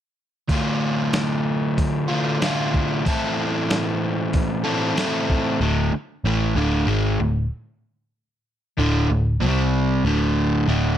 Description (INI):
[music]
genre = blues rock power trio and southern rock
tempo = 94 BPM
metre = 4/4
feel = straight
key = D minor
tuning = A4 = 440 Hz
[part]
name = crunchy overdriven guitar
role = riff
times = 0.5-11.0 s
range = D2 to A4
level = -20 LUFS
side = equal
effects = none
[part]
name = dusty soul sampler-style drum kit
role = drums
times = 0.5-5.4 s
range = hi-hat, kick drum, snare drum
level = -23 LUFS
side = equal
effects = none
[part]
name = vintage muted picked electric bass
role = bass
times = 5.6-11.0 s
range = D1 to C2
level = -22 LUFS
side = equal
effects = none
[sound]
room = light reverb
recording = none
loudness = -19 LUFS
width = side -10 dB against mid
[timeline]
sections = 0.5-5.6 A section; 5.6-11.0 B section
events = none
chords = 0.5 Dm; 3.1 Am; 5.6 D5; 9.4 C5; 10.1 D5